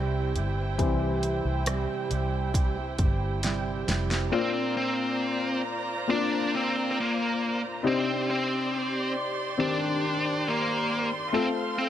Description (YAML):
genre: pop ballad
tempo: 68 BPM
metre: 4/4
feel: straight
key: unclear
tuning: A4 = 440 Hz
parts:
  - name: warm baby grand piano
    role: accompaniment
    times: 0.0-11.9 s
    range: Bb2 to A4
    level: -31 LUFS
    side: left 5 dB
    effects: none
  - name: warm studio string section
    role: sustained chords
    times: 0.0-11.9 s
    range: E4 to C6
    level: -33 LUFS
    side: right 1 dB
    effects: none
  - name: fingerpicked steel-string acoustic guitar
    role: arpeggios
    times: 0.0-4.3 s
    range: C3 to G4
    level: -33 LUFS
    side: right 6 dB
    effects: none
  - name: vintage muted fingered electric bass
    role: bass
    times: 0.0-4.3 s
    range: F1 to C2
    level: -29 LUFS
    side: equal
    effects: none
  - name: pop drum kit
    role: drums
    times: 0.4-4.3 s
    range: hi-hat, kick drum, rim click, snare drum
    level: -28 LUFS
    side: equal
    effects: none
  - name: bluesy overdriven lead guitar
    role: melody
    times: 4.3-11.9 s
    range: Bb3 to D4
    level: -28 LUFS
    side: equal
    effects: distortion
room: digital ambience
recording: none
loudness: -25 LUFS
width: side -11 dB against mid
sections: 0.0-4.3 A section; 4.3-11.9 B section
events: grand piano solo 0.0-4.3; drum fill 3.4-4.3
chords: 0.0 C; 4.3 Bbadd9; 7.8 Cmadd9; 11.3 F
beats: | 0.79 1.67 2.54 3.43 | 4.32 5.20 6.08 6.96 | 7.84 8.71 9.59 10.46 | 11.33